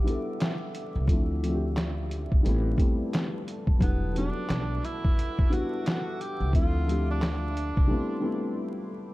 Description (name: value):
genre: lo-fi hip hop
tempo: 88 BPM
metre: 4/4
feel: swing 63% on 16ths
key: E minor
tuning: A4 = 440 Hz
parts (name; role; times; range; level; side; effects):
- felt-muted upright piano; accompaniment; 0.0-9.1 s; F3 to A4; -31 LUFS; left 1 dB; cassette tape
- deep dark ambient pad; sustained chords; 0.0-9.1 s; F4 to D6; -42 LUFS; right 2 dB; chorus, built-in reverb
- trip hop sampler-style drum kit; drums; 0.1-7.9 s; handclaps, hi-hat, kick drum, snare drum; -26 LUFS; equal; none
- upright bass; bass; 1.0-7.9 s; E1 to D2; -28 LUFS; equal; none
- breathy tenor saxophone; melody; 3.8-8.9 s; B3 to G4; -35 LUFS; right 1 dB; none
room: studio ambience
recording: dark, warm production, vinyl crackle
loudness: -25 LUFS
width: side -19 dB against mid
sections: 0.0-9.1 A section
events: break 0.0-3.8, 7.9-9.1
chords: 0.0 Em9; 1.1 Dm9; 2.4 Am9; 3.8 Em9; 6.5 Dm9; 7.9 Am9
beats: 0.39 | 1.07 1.75 2.44 3.12 | 3.80 4.48 5.17 5.85 | 6.53 7.21 7.89 8.57